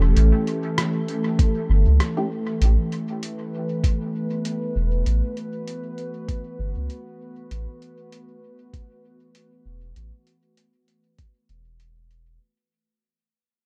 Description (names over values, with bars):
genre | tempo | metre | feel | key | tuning
ambient dub | 98 BPM | 4/4 | swing 57% on 16ths | A mixolydian | A4 = 440 Hz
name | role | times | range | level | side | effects
warbly tape-like pad | sustained chords | 0.0-12.4 s | E3 to B4 | -30 LUFS | equal | chorus, built-in reverb
warm sub bass | bass | 0.0-12.4 s | E1 to C#2 | -20 LUFS | equal | none
lo-fi sampler-style drum kit | drums | 0.2-12.2 s | hi-hat, rim click | -34 LUFS | equal | overdrive, dub echo
electronic kick drum | drums | 1.4-11.3 s | none | -22 LUFS | equal | overdrive
filtered dub chord stab | stabs | 2.2-2.3 s | A3 to G4 | -36 LUFS | equal | phaser, lush chorus, dub echo
room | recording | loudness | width
digital ambience | dark, warm production | -23 LUFS | mono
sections
0.0-12.4 A section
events
fade-out 0.0-12.4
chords
0.0 A7